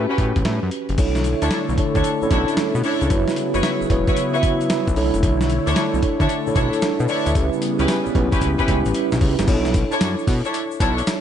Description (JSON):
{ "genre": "R&B, new jack swing", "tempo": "113 BPM", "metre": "4/4", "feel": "swing 66% on 16ths", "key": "B minor", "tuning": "A4 = 440 Hz", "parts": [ { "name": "mellow tine electric piano", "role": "accompaniment", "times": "0.0-11.2 s", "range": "C#4 to E5", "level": "-22 LUFS", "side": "right 2 dB", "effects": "medium stereo tremolo" }, { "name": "fat analog bass", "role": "bass", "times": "0.0-11.0 s", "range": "E1 to B2", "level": "-22 LUFS", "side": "equal", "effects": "none" }, { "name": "rich studio string section", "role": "stabs", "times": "0.1-11.0 s", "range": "C#4 to C#5", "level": "-26 LUFS", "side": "left 3 dB", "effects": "tape echo" }, { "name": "dusty soul sampler-style drum kit", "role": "drums", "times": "0.2-11.2 s", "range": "crash cymbal, hi-hat, kick drum, snare drum, tambourine", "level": "-22 LUFS", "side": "equal", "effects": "overdrive" }, { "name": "phased analog pad", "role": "sustained chords", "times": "1.0-9.5 s", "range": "C#3 to C#5", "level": "-26 LUFS", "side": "equal", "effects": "phaser, chorus" }, { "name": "egg shaker", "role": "percussion", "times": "1.0-11.2 s", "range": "none", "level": "-43 LUFS", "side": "left 10 dB", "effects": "none" } ], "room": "light reverb", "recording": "nothing above 10.5 kHz", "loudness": "-17 LUFS", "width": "side -9 dB against mid", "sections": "1.0-9.5 A section; 9.5-11.2 B section", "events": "drum fill 8.4-9.5", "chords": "0.0 A13; 1.0 Bm11; 3.1 F#7sus4; 5.0 Bm11; 7.4 C#m7b5; 9.5 Bm11" }